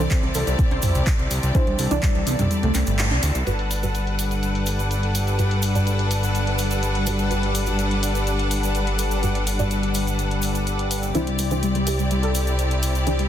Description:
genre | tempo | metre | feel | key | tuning
progressive house | 125 BPM | 4/4 | straight | G major | A4 = 440 Hz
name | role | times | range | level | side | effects
clear studio string section | sustained chords | 0.0-13.3 s | C3 to F#5 | -26 LUFS | left 1 dB | sidechain pumping
soft round pluck | arpeggios | 0.0-3.4, 11.1-13.3 s | G3 to C5 | -27 LUFS | equal | ensemble chorus, sidechain pumping, digital delay
deep mellow chord stab | stabs | 0.0-13.3 s | G2 to D5 | -28 LUFS | right 2 dB | chorus, sidechain pumping, digital delay
fat analog bass | bass | 0.0-13.3 s | G1 to D2 | -23 LUFS | equal | sidechain pumping
drifting glass-harmonics texture | texture | 0.0-13.3 s | G3 to A5 | -31 LUFS | equal | chorus, built-in reverb, sidechain pumping
deep house drum kit | drums | 0.1-13.3 s | handclaps, hi-hat | -30 LUFS | left 2 dB | sidechain pumping on hats, low-pass filter on hats, low-pass filter on snare, low-pass filter on room
electronic kick drum | drums | 0.1-2.1 s | none | -20 LUFS | equal | none
cabasa | percussion | 0.1-13.2 s | none | -34 LUFS | right 6 dB | none
electronic congas and toms | percussion | 0.7-3.2 s | none | -26 LUFS | right 2 dB | sidechain pumping on perc, sidechain pumping on toms
room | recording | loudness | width
light reverb, digital ambience | dense, heavily limited modern master | -19 LUFS | side -10 dB against mid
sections
0.0-3.5 A section; 3.5-13.3 B section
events
kick drops out 2.5-3.5; band accent 3.0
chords
0.0 Cadd9; 3.5 Gmaj7; 11.1 Cadd9

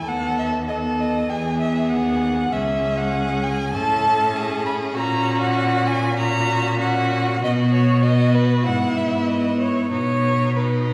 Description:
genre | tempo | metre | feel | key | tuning
quick classical-period movement for string quartet | 98 BPM | 4/4 | straight | unclear | A4 = 436 Hz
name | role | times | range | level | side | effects
rich violin | melody | 0.0-10.9 s | B4 to B5 | -26 LUFS | equal | none
rich violin | second line | 0.0-10.9 s | D#4 to A4 | -29 LUFS | equal | none
warm viola | accompaniment | 0.0-10.9 s | B3 to C#4 | -26 LUFS | equal | none
rich cello | bass | 0.1-10.9 s | C#2 to B2 | -26 LUFS | equal | none
room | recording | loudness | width
wet scoring stage reverb, RT60 1.4 s | recorded in a church or concert hall | -20 LUFS | mono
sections
0.0-10.9 A section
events
none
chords
0.1 B7/D#; 1.3 E; 2.5 C#5; 3.7 A; 5.0 F#/A#; 7.4 B5; 8.7 E/G#; 9.9 B

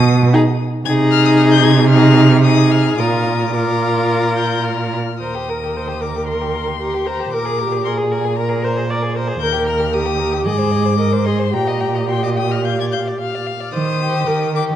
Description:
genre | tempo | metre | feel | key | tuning
quick classical-period movement for string quartet | 106-116 BPM | 4/4 | rubato | Eb major | A4 = 440 Hz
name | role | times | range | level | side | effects
warm violin | melody | 0.0-14.6 s | Ab5 to Ab6 | -24 LUFS | left 11 dB | none
rich cello | bass | 0.0-14.8 s | Eb2 to Eb3 | -17 LUFS | right 3 dB | none
clear violin | second line | 0.3-14.8 s | G4 to G5 | -23 LUFS | left 3 dB | none
rich viola | accompaniment | 0.3-14.6 s | Eb4 to D5 | -19 LUFS | equal | none
room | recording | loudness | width
wet recital hall reverb, RT60 1.6 s | dark, warm production | -14 LUFS | side -11 dB against mid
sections
0.0-5.2 A section; 5.2-14.8 B section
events
none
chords
0.0 Abm/Cb (rootless); 0.9 Ab/C; 3.0 Bb; 5.2 Eb; 7.3 Bb7; 9.4 Eb; 10.5 Ab; 11.5 Eb/Bb; 13.7 Eb

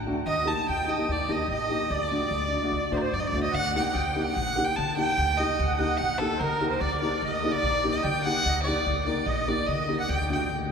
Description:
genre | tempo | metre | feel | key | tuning
klezmer | 147 BPM | 4/4 | straight | unclear | A4 = 440 Hz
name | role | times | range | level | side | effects
upright bass | bass | 0.0-10.7 s | A1 to D3 | -31 LUFS | equal | none
dark upright piano | accompaniment | 0.1-10.4 s | A3 to Bb4 | -30 LUFS | left 1 dB | none
warm violin | melody | 0.3-10.5 s | A4 to A5 | -28 LUFS | right 1 dB | none
musette accordion | second line | 0.3-10.5 s | A4 to A5 | -31 LUFS | right 2 dB | none
room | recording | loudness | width
wet cathedral reverb, RT60 6.0 s | recorded in a church or concert hall | -24 LUFS | side -6 dB against mid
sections
0.0-3.5 A section; 3.5-10.7 B section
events
none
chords
0.3 Eb; 1.9 D; 3.5 Eb; 10.1 D

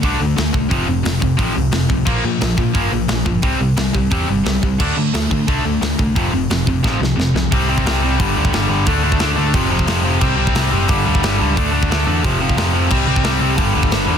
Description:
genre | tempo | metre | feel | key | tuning
punk rock | 177 BPM | 4/4 | straight | unclear | A4 = 440 Hz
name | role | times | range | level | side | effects
sludgy distorted guitar | riff | 0.0-14.2 s | F2 to D4 | -21 LUFS | right 14 dB | overdrive
tight distorted guitar | riff | 0.0-14.2 s | F2 to D4 | -19 LUFS | left 10 dB | distortion
overdriven picked electric bass | bass | 0.0-14.2 s | F1 to D3 | -20 LUFS | right 1 dB | none
tight metal drum kit | drums | 0.0-14.0 s | crash cymbal, hi-hat, kick drum, snare drum | -20 LUFS | right 1 dB | soft clipping on kick
room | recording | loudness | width
little or no reverb | dense, heavily limited modern master | -14 LUFS | side -8 dB against mid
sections
0.0-7.5 A section; 7.5-14.2 B section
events
drum fill 6.8-7.5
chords
0.0 D5; 0.7 F5; 2.1 Bb5; 3.4 C5; 4.8 D5; 6.2 F5; 7.5 C5; 8.2 G5; 8.9 D5; 9.5 F5; 10.2 C5; 10.9 G5; 11.6 D5; 12.2 F5; 12.9 C5; 13.6 G5

